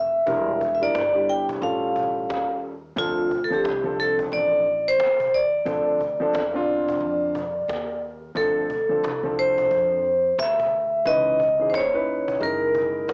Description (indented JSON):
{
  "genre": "hip hop, jazz-hop",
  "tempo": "89 BPM",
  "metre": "4/4",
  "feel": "swing 61% on 16ths",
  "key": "D minor",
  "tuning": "A4 = 444 Hz",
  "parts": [
    { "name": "vibraphone with hard mallets", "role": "melody", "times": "0.0-13.1 s", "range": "F4 to G5", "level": "-24 LUFS", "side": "equal", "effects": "cassette tape" },
    { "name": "upright bass", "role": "bass", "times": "0.0-13.1 s", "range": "E1 to F2", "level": "-40 LUFS", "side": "equal", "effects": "none" },
    { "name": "warm grand piano", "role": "accompaniment", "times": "0.3-13.1 s", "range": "D3 to B4", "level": "-30 LUFS", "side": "equal", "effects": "cassette tape" },
    { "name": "cajon", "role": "drums", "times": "0.3-13.1 s", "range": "none", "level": "-38 LUFS", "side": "equal", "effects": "cassette tape" }
  ],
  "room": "light reverb",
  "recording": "home recording on cassette, small speaker sound",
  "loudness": "-23 LUFS",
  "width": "mono",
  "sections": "0.0-8.4 A section; 8.4-13.1 A section",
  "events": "none",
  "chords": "0.3 Em7b5; 1.6 Aaug7; 3.0 Dm7; 11.1 C#m9; 12.4 F#13"
}